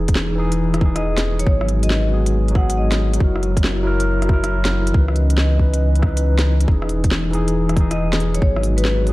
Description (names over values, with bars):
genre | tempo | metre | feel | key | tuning
future garage | 138 BPM | 4/4 | swing 66% on 16ths | unclear | A4 = 441 Hz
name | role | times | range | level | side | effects
overdriven tine electric piano | accompaniment | 0.0-9.1 s | E3 to B4 | -24 LUFS | equal | fast tremolo, sidechain pumping, tape echo
dark analog pad | sustained chords | 0.0-9.1 s | E3 to D#5 | -25 LUFS | left 2 dB | chorus, vintage 12-bit sampler grit, sidechain pumping
warm sub bass | bass | 0.0-9.1 s | E1 to C#2 | -19 LUFS | equal | sidechain pumping
electronic kick drum | drums | 0.1-8.5 s | none | -17 LUFS | equal | none
organic electronic drum kit | drums | 0.1-9.1 s | hi-hat, rim click, snare drum | -25 LUFS | equal | none
vibraphone with medium hard mallets | melody | 1.0-3.1, 7.9-9.0 s | B4 to F#5 | -27 LUFS | left 1 dB | dub echo
room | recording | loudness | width
light reverb, digital ambience | dark, warm production, vinyl crackle | -15 LUFS | side -18 dB against mid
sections
0.0-9.1 A section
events
none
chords
0.0 Emaj7; 1.5 G#m7; 3.2 F#7; 4.9 C#m9; 6.7 Emaj7; 8.4 G#m7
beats
0.16 0.59 1.03 | 1.46 1.90 2.33 2.77 | 3.20 3.64 4.07 4.50 | 4.94 5.38 5.81 6.25 | 6.68 7.11 7.55 7.98 | 8.42 8.85